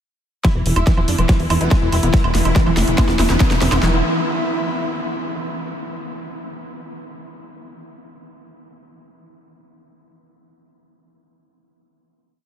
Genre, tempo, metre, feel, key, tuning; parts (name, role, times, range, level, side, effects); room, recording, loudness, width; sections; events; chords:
psychedelic trance; 142 BPM; 4/4; straight; A4 = 441 Hz
dense compressed supersaw; melody; 0.4-4.0 s; E3 to E4; -27 LUFS; right 1 dB; phaser, sidechain pumping, tape echo
evolving wavetable pad; sustained chords; 0.7-3.9 s; E3 to E4; -28 LUFS; left 2 dB
overdriven acid bass; riff; 0.4-4.0 s; E3 to E4; -27 LUFS; left 1 dB; distortion, auto-pan, sidechain pumping, ping-pong delay
big-room dance drum kit; drums; 0.4-3.9 s; handclaps, kick drum, snare drum; -17 LUFS; equal; overdrive
big-room dance drum kit; drums; 0.4-3.8 s; hi-hat, snare drum, woodblock; -24 LUFS; right 1 dB; overdrive
riser; sound effects; 2.3-3.8 s; -32 LUFS; equal
airy breathy pad; texture; 0.4-5.5 s; B3 to B5; -30 LUFS; equal; chorus, sidechain pumping
plucky analog bass; bass; 0.6-4.0 s; E1 to F1; -19 LUFS; equal
formant-sweep wobble bass; second line; 1.3-3.9 s; barely audible
moderate huge ambient reverb, RT60 8.9 s; dreamy mix soaked in reverb; -15 LUFS; side -9 dB against mid
0.4-3.8 build; 3.8-5.5 final chord
build-up 0.4-3.8; drum fill 0.4-3.8; filter sweep on acid bass 0.4-3.8
0.4 E5